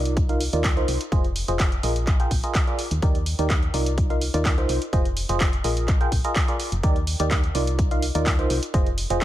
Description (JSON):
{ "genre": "piano house", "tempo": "126 BPM", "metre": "4/4", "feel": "straight", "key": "Eb major", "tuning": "A4 = 438 Hz", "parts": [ { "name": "barking FM electric piano", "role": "riff", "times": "0.0-9.2 s", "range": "Eb4 to G5", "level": "-26 LUFS", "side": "right 1 dB", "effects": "chorus, phaser, tremolo, sidechain pumping, low-pass filter, digital delay" }, { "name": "solid FM bass", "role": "bass", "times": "0.0-9.2 s", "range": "F1 to Eb2", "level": "-25 LUFS", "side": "equal", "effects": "sidechain pumping" }, { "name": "punchy analog drum machine", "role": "drums", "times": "0.1-9.2 s", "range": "handclaps, hi-hat", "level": "-29 LUFS", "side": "right 1 dB", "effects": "none" }, { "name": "electronic kick drum", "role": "drums", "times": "0.2-9.2 s", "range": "none", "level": "-22 LUFS", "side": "equal", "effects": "none" } ], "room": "digital ambience", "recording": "none", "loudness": "-20 LUFS", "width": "side -13 dB against mid", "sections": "0.0-9.2 A section", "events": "none", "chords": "0.2 Cm11; 1.1 Fm7; 2.1 Bb7sus4; 3.0 Ebmaj7; 4.0 Cm11; 4.9 Fm7; 5.9 Bb7sus4; 6.8 Ebmaj7; 7.8 Cm11; 8.7 Fm7", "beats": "0.17 0.64 | 1.12 1.60 2.07 2.55 | 3.02 3.50 3.98 4.45 | 4.93 5.41 5.88 6.36 | 6.83 7.31 7.79 8.26 | 8.74 9.21" }